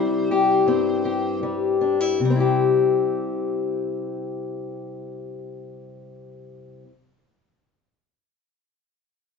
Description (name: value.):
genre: acoustic folk duo or small band.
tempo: 77-84 BPM.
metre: 4/4.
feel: straight.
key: C major.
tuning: A4 = 438 Hz.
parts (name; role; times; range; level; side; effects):
metal-body resonator slide guitar; melody; 0.0-1.4 s; C5; -45 LUFS; right 1 dB; none.
fingerpicked acoustic archtop guitar; accompaniment; 0.0-6.9 s; G2 to G4; -21 LUFS; left 4 dB; none.
room: moderate studio reverb, RT60 1.0 s.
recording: band playing live in one room, nothing above 7.7 kHz.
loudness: -20 LUFS.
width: side -5 dB against mid.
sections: 0.0-2.2 A section; 2.2-5.3 B section.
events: slowing down 0.0-2.2.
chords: 0.0 C.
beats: 0.68 1.43 | 2.20 2.98 3.76 4.54.